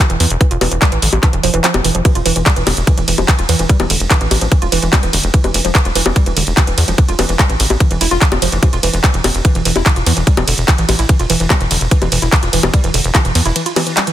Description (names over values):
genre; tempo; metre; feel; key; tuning
psychedelic trance; 146 BPM; 4/4; straight; E phrygian; A4 = 440 Hz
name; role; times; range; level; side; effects
woody wave-folded pluck; riff; 0.0-14.1 s; D3 to F4; -20 LUFS; moving between left 1 dB and right 5 dB; chorus, auto-pan, sidechain pumping, tape echo
electronic kick drum; drums; 0.0-13.2 s; none; -12 LUFS; equal; none
garage drum kit; drums; 0.0-14.1 s; bongos, handclaps, hi-hat, ride cymbal; -16 LUFS; left 1 dB; none
tight sequencer bass; bass; 0.1-13.5 s; E1 to E2; -17 LUFS; equal; none
room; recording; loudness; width
light reverb; dense, heavily limited modern master; -11 LUFS; side -12 dB against mid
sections
0.0-14.1 A section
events
kick drops out 1.6-2.1; break 13.6-14.1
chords
none